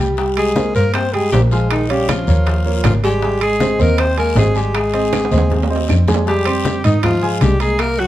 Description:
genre	Afro-Cuban jazz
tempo	158 BPM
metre	4/4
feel	straight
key	Ab major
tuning	A4 = 440 Hz
part	warm upright piano	accompaniment	0.0-8.1 s	G3 to Gb6	-21 LUFS	right 2 dB	none
part	dark double bass	bass	0.0-8.1 s	Ab1 to Ab2	-17 LUFS	equal	none
part	bongos	percussion	0.2-8.1 s	none	-27 LUFS	left 5 dB	none
part	congas	percussion	0.2-8.1 s	none	-24 LUFS	left 2 dB	none
part	guiro	percussion	0.2-8.1 s	none	-33 LUFS	left 7 dB	none
part	clear alto saxophone	melody	0.4-8.1 s	Eb4 to C5	-20 LUFS	equal	none
part	breathy trombone	second line	0.4-8.1 s	Eb3 to C4	-24 LUFS	left 4 dB	none
part	claves	percussion	0.4-8.0 s	none	-32 LUFS	right 7 dB	none
part	timbales	percussion	0.4-8.0 s	none	-26 LUFS	right 6 dB	none
room	light reverb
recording	dark, warm production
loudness	-13 LUFS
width	side -14 dB against mid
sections	0.0-6.3 A section; 6.3-8.1 B section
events	drum fill 5.1-6.3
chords	0.2 C5; 1.7 Bbm7; 2.5 Ebsus2; 3.2 Ab; 6.3 Fm11

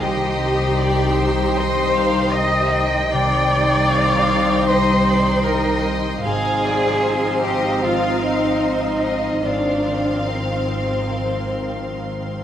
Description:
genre	cinematic, emotional film score for orchestra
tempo	76 BPM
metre	4/4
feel	uneven beats, rubato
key	unclear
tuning	A4 = 440 Hz
part	rich studio violin section	melody	0.0-12.3 s	C5 to G5	-28 LUFS	left 3 dB	none
part	mellow hollow concert flute	second line	0.0-12.3 s	C5 to Eb6	-24 LUFS	left 1 dB	none
part	rich studio violin section	second line	0.0-12.4 s	F5 to C6	-28 LUFS	equal	none
part	warm symphonic viola section	accompaniment	0.0-12.4 s	Eb3 to Eb4	-24 LUFS	right 1 dB	none
part	dark French horn section	sustained chords	0.0-12.4 s	Eb3 to C5	-27 LUFS	left 5 dB	none
part	concert harp	arpeggios	0.0-12.4 s	Ab2 to F4	-29 LUFS	left 4 dB	none
part	rich studio cello section	bass	0.0-12.3 s	C4 to Eb5	-23 LUFS	right 1 dB	none
part	rich studio double bass section	bass	0.0-12.4 s	Ab1 to C2	-25 LUFS	right 2 dB	none
room	wet recital hall reverb, RT60 1.4 s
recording	vinyl crackle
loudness	-16 LUFS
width	side -10 dB against mid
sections	0.0-12.4 A section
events	none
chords	0.0 Cm; 6.2 Ab6

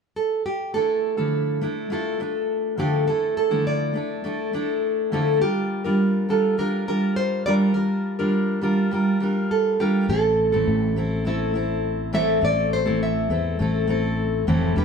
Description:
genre	pop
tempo	103 BPM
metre	4/4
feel	straight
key	D minor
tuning	A4 = 440 Hz
part	nylon-string guitar	melody	0.2-14.8 s	E4 to E5	-24 LUFS	right 3 dB	none
part	fingerpicked steel-string acoustic guitar	accompaniment	0.7-14.8 s	A2 to B4	-22 LUFS	left 1 dB	none
part	sustaining fretless electric bass	bass	10.1-14.8 s	E1 to E2	-25 LUFS	equal	none
room	wet studio reverb, RT60 0.9 s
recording	band playing live in one room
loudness	-20 LUFS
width	side -6 dB against mid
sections	0.7-14.8 A section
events	none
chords	0.0 N.C.; 0.7 Dmadd9; 5.4 Gm7; 10.1 Am

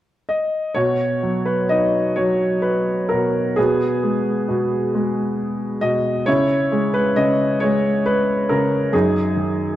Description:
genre	classical, lyrical solo piano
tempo	44 BPM (dotted quarters)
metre	6/8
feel	uneven beats, rubato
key	B major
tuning	A4 = 440 Hz
part	clear baby grand piano	solo	0.3-9.8 s	F#2 to D#5	-17 LUFS	equal	none
room	moderate concert hall reverb, RT60 2.2 s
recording	dark, warm production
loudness	-17 LUFS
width	side -13 dB against mid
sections	0.8-9.8 A section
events	none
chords	0.0 N.C.; 0.8 B; 3.6 G#m/B; 6.3 C#m; 8.9 D#madd11/F#

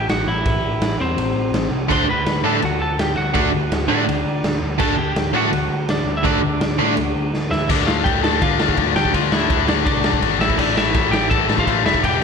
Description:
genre	punk rock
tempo	166 BPM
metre	4/4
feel	straight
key	unclear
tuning	A4 = 440 Hz
part	lightly driven lead guitar	melody	0.0-12.2 s	C4 to C6	-22 LUFS	left 1 dB	slapback echo
part	overdriven picked electric bass	bass	0.0-12.2 s	E1 to A2	-24 LUFS	right 1 dB	none
part	raw garage drum kit	drums	0.1-12.1 s	crash cymbal, kick drum, ride cymbal, snare drum	-21 LUFS	right 1 dB	none
part	crunchy overdriven guitar	riff	1.9-6.9 s	D3 to D4	-24 LUFS	right 10 dB	none
part	tight distorted guitar	riff	1.9-12.2 s	E2 to D4	-22 LUFS	left 12 dB	distortion, slapback echo
room	moderate lush hall reverb, RT60 1.8 s, small room ambience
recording	big arena sound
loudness	-16 LUFS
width	side -6 dB against mid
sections	0.0-7.7 A section; 7.7-12.2 B section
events	half time 0.0-7.7; drum fill 7.3-7.7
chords	0.0 Am; 1.9 D; 7.7 Dm; 10.4 A5

